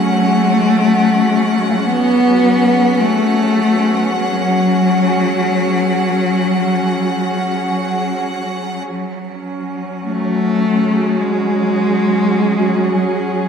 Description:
ambient; 52 BPM; 4/4; straight; F# minor; A4 = 440 Hz
clear cello; melody; 0.0-13.5 s; F#3 to B3; -15 LUFS; left 2 dB; ping-pong delay
muted studio string section; sustained chords; 0.0-13.5 s; F#3 to G#4; -18 LUFS; right 1 dB
felt-muted upright piano; arpeggios; 0.0-13.5 s; C#5 to F#5; -37 LUFS; right 1 dB
bright chamber violin section; texture; 0.0-13.5 s; F#5; -24 LUFS; right 1 dB
wet scoring stage reverb, RT60 2.1 s; dark, warm production; -13 LUFS; side -7 dB against mid
0.0-8.9 A section; 8.9-13.5 B section
0.0 F#m
0.73 1.89 3.04 | 4.19 5.35 6.51 7.69 | 8.88 10.05 11.21 12.35

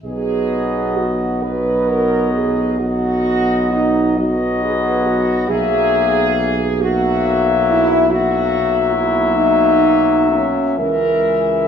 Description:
classical, hymn-like piece for brass band; 40-48 BPM (dotted quarters); 12/8; rubato; B major; A4 = 440 Hz
warm flugelhorn; melody; 0.0-11.7 s; D#5 to E5; -19 LUFS; left 7 dB
dark French horn section; second line; 0.0-11.7 s; C#4 to B4; -18 LUFS; right 4 dB
clear trombone; accompaniment; 0.0-11.7 s; E3 to F#3; -25 LUFS; right 2 dB
dark trombone section; accompaniment; 0.0-11.7 s; G#3 to B3; -25 LUFS; left 2 dB
dark tuba; bass; 0.0-11.7 s; B1 to C#2; -22 LUFS; right 1 dB
wet recital hall reverb, RT60 1.7 s; recorded in a church or concert hall; -14 LUFS; side -7 dB against mid
0.0-11.7 A section
0.0 B; 5.5 F#7/B; 10.8 A#m7b5/C#
| 0.03 1.43 2.80 4.18 | 5.49 6.81 8.10 9.36 | 10.78

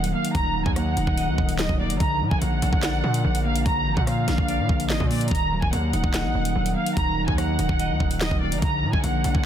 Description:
hip hop, drill; 145 BPM; 4/4; half-time; Eb harmonic minor; A4 = 440 Hz
warm studio violin section; melody; 0.0-9.5 s; D5 to Bb5; -27 LUFS; right 2 dB; low-pass filter, digital delay
clean electric guitar; accompaniment; 0.0-9.5 s; D3 to Eb5; -27 LUFS; left 3 dB; lush chorus, low-pass filter
deep dark ambient pad; sustained chords; 0.0-9.5 s; Eb3 to Gb5; -32 LUFS; right 2 dB; chorus, built-in reverb
distorted 808-style bass; bass; 0.0-9.5 s; D1 to Bb2; -26 LUFS; equal; distortion
drill drum kit; drums; 0.0-9.4 s; handclaps, hi-hat, kick drum, rim click, snare drum; -26 LUFS; equal
digital ambience; dense, heavily limited modern master; -20 LUFS; side -10 dB against mid
0.0-9.5 A section
0.0 Ebm; 2.0 Bb; 5.3 Ebm; 8.6 Bb
| 0.35 0.76 1.18 1.59 | 2.00 2.42 2.83 3.24 | 3.66 4.07 4.49 4.90 | 5.31 5.73 6.14 6.55 | 6.97 7.38 7.80 8.21 | 8.62 9.04 9.45

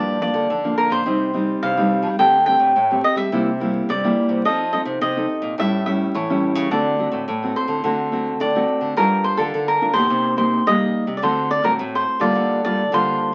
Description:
samba and choro; 106 BPM; 4/4; straight; G minor; A4 = 441 Hz
cavaquinho; melody; 0.0-13.3 s; A4 to G5; -22 LUFS; equal
nylon-string guitar; accompaniment; 0.0-13.3 s; G2 to Bb4; -24 LUFS; equal
nylon-string guitar; bass; 0.0-13.2 s; G2 to G3; -28 LUFS; equal
wet studio ambience, RT60 0.5 s; very old 78 rpm record, vinyl crackle; -20 LUFS; mono
0.0-13.3 A section
0.0 Gm7; 1.1 Cm; 2.2 D7sus4; 3.3 C7; 4.5 F7; 5.6 A7; 6.7 D7; 9.0 Gm7; 10.1 Cm7; 11.2 D7; 12.4 Gm7/D
0.50 1.06 1.63 | 2.19 2.76 3.32 3.89 | 4.45 5.02 5.58 6.15 | 6.71 7.28 7.84 8.41 | 8.97 9.54 10.10 10.67 | 11.23 11.80 12.36 12.93

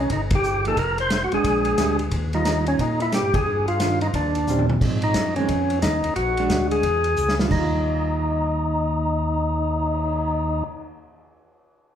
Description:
soul jazz organ trio; 178 BPM; 4/4; swing 63% on 8ths; Eb major; A4 = 440 Hz
percussive tonewheel organ; melody; 0.0-10.6 s; Db4 to C5; -22 LUFS; left 1 dB; slow rotary speaker, overdrive
tonewheel organ; bass; 0.0-10.6 s; F1 to Bb2; -26 LUFS; equal; overdrive, chorus vibrato, slow rotary speaker
vintage drum kit; drums; 0.1-10.1 s; crash cymbal, cymbal swell, hi-hat, kick drum, ride cymbal, snare drum, toms; -26 LUFS; equal
hollow-body jazz guitar; accompaniment; 0.7-10.8 s; Eb3 to C5; -28 LUFS; right 4 dB
wet large studio reverb, RT60 1.3 s; heard from further back in the room; -19 LUFS; side -9 dB against mid
0.0-4.8 A section; 4.8-7.5 B section; 7.5-10.2 C section
band accent 0.3, 3.3; drum fill 4.5-4.8, 7.2-7.5
0.0 Cm7 (rootless); 0.8 Fm; 1.4 Bb6; 2.1 Ebadd9; 4.1 Eb6; 4.8 Ab6; 5.5 Dbadd9; 6.2 Bb7; 6.8 E7; 7.5 Ebadd9
0.10 0.44 | 0.78 1.11 1.45 1.79 | 2.12 2.46 2.80 3.13 | 3.47 3.81 4.14 4.48 | 4.82 5.15 5.49 5.83 | 6.17 6.50 6.84 7.18 | 7.51 7.85 8.19 8.53 | 8.86 9.20 9.54 9.88

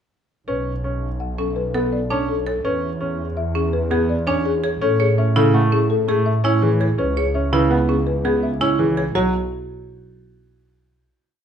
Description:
classical, minimalist pattern music; 166 BPM; 6/4; straight; B dorian; A4 = 440 Hz
folk marimba with medium mallets; melody; 0.5-9.3 s; G#4 to A5; -23 LUFS; left 7 dB
clear concert grand piano; accompaniment; 0.5-9.3 s; C#3 to C#4; -22 LUFS; right 1 dB
rich symphonic double bass section; bass; 0.5-9.3 s; B1 to A2; -22 LUFS; right 1 dB
buzzing marimba with hard mallets; arpeggios; 1.4-9.3 s; C#4 to C#5; -24 LUFS; right 7 dB
moderate large studio reverb, RT60 0.9 s; dark, warm production; -17 LUFS; side -8 dB against mid
0.5-9.2 A section; 9.2-11.3 final chord
0.5 B7(no3); 2.6 E; 4.8 Amaj7; 7.0 C#m7; 9.2 B5
| 0.48 0.84 1.20 1.56 1.93 2.29 | 2.65 3.01 3.37 3.73 4.09 4.46 | 4.82 5.18 5.54 5.90 6.26 6.62 | 6.99 7.35 7.71 8.07 8.43 8.79 | 9.15

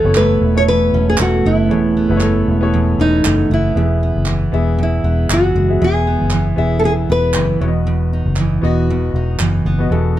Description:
acoustic pop; 117 BPM; 4/4; swing 55% on 16ths; E major; A4 = 438 Hz
nylon-string guitar; melody; 0.0-7.6 s; D#4 to C#5; -18 LUFS; equal; plate reverb
picked steel-string acoustic guitar; accompaniment; 0.0-10.2 s; E2 to F#4; -19 LUFS; right 4 dB
warm concert grand piano; accompaniment; 0.0-10.2 s; E3 to E5; -23 LUFS; left 4 dB
vintage muted fingered electric bass; bass; 0.0-10.2 s; E1 to F#1; -17 LUFS; left 1 dB
group handclap; percussion; 0.1-9.5 s; -23 LUFS; right 4 dB
little or no reverb; dark, warm production; -13 LUFS; side -13 dB against mid
0.0-3.8 A section; 3.8-10.2 B section
0.0 Aadd9/E; 3.8 E; 7.6 B/E
0.17 0.68 1.19 | 1.71 2.22 2.73 3.24 | 3.76 4.27 4.78 5.30 | 5.81 6.32 6.84 7.35 | 7.86 8.38 8.89 9.40 | 9.91

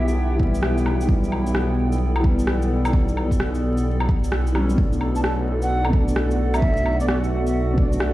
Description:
future garage; 130 BPM; 4/4; swing 64% on 16ths; A4 = 441 Hz
bright baroque flute; melody; 0.0-0.1, 5.2-7.2 s; D5 to A5; -29 LUFS; right 1 dB; analog delay
dark upright piano; accompaniment; 0.0-8.1 s; B2 to D4; -27 LUFS; equal; sidechain pumping, analog delay
warbly tape-like pad; sustained chords; 0.0-8.1 s; B3 to G5; -28 LUFS; equal; chorus, built-in reverb, sidechain pumping
swelling detuned saw bass; bass; 0.0-8.1 s; B1; -22 LUFS; equal; sidechain pumping
electronic shaker, rim click and woodblock; drums; 0.1-8.1 s; -28 LUFS; equal
electronic kick drum; drums; 0.4-7.9 s; -20 LUFS; equal
light reverb, digital ambience; played on a big sound system in a bare room, large studio reverb, vinyl crackle; -18 LUFS; side -16 dB against mid
0.0-8.1 A section
0.0 Em/B; 4.8 Bm7
0.16 0.62 | 1.09 1.55 2.01 2.47 | 2.93 3.39 3.86 4.32 | 4.78 5.24 5.70 6.16 | 6.62 7.09 7.55 8.01

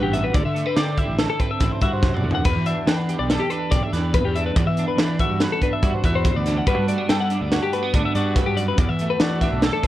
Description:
math rock and midwest emo; 142 BPM; 5/4; straight; E minor; A4 = 443 Hz
clean electric guitar; accompaniment; 0.0-9.9 s; E2 to B4; -26 LUFS; right 5 dB; analog chorus, plate reverb
twelve-string electric guitar; arpeggios; 0.0-9.9 s; G4 to G5; -25 LUFS; left 6 dB; plate reverb
fuzz fingered electric bass; bass; 0.0-9.7 s; A1 to G3; -24 LUFS; equal; overdrive
crisp fusion drum kit; drums; 0.1-9.9 s; hi-hat, kick drum, snare drum, splash cymbal, toms; -22 LUFS; equal
light reverb; worn, warbling old tape, cassette tape, warbly pitch drift; -18 LUFS; side -14 dB against mid
0.0-9.9 A section
drum fill 2.0-2.5
0.3 D9sus4; 2.5 Em9; 4.6 Cmaj9#11/E; 6.7 Gmaj7; 8.8 Em11
| 0.35 0.77 1.19 1.61 2.03 | 2.46 2.88 3.30 3.72 4.14 | 4.56 4.99 5.41 5.83 6.25 | 6.67 7.09 7.51 7.94 8.36 | 8.78 9.20 9.62

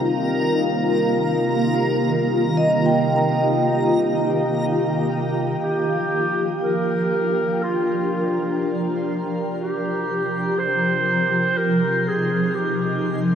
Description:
ambient; free time; A4 = 440 Hz
shimmering ambient pad; sustained chords; 0.0-13.3 s; C3 to Bb4; -21 LUFS; equal; chorus, built-in reverb, phaser, shimmer reverb
vibraphone with medium mallets; arpeggios; 0.0-6.6 s; Eb5 to Bb5; -25 LUFS; right 1 dB; shimmer reverb, diffuse ambient delay
analog drone; drone; 0.0-13.3 s; C3 to G3; -30 LUFS; equal; chorus
backwards swelling texture; texture; 0.0-13.3 s; Bb4 to C6; -29 LUFS; right 2 dB; built-in reverb, shimmer reverb
mellow clarinet; melody; 5.6-13.3 s; F4 to C5; -22 LUFS; right 1 dB; shimmer reverb, diffuse ambient delay
wet huge ambient reverb, RT60 7.0 s; cassette tape; -18 LUFS; side -8 dB against mid
0.0-5.6 A section; 5.6-13.3 B section
fade-in on synth texture 5.6-13.3
0.0 Ebadd9; 5.6 Gm7; 9.6 Cm7
free time

